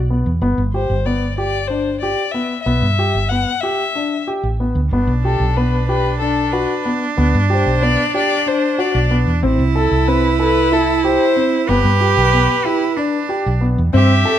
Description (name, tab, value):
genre	contemporary instrumental, chamber music in an uneven meter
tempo	186 BPM (eighths)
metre	7/8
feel	straight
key	G major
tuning	A4 = 440 Hz
part	woody fretless electric bass	bass	0.0-14.2 s	G1 to G2	-17 LUFS	right 1 dB	none
part	warm concert grand piano	arpeggios	0.1-14.4 s	B3 to A4	-20 LUFS	left 1 dB	none
part	dark violin	melody	0.7-14.4 s	A4 to F#5	-20 LUFS	left 6 dB	none
part	bright cello	second line	4.9-14.4 s	D4 to G4	-19 LUFS	right 8 dB	none
room	light reverb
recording	close, detailed microphones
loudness	-14 LUFS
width	side -10 dB against mid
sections	0.0-13.9 A section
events	none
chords	0.4 Em7/G; 4.9 G; 9.4 Am; 11.7 G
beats	0.09 | 0.41 0.73 1.05 1.37 1.69 2.02 2.34 | 2.66 2.98 3.30 3.62 3.95 4.27 4.59 | 4.91 5.24 5.56 5.88 6.20 6.53 6.85 | 7.17 7.50 7.82 8.14 8.46 8.79 9.11 | 9.43 9.75 10.08 10.40 10.72 11.04 11.37 | 11.69 12.01 12.33 12.65 12.97 13.29 13.62 | 13.94 14.26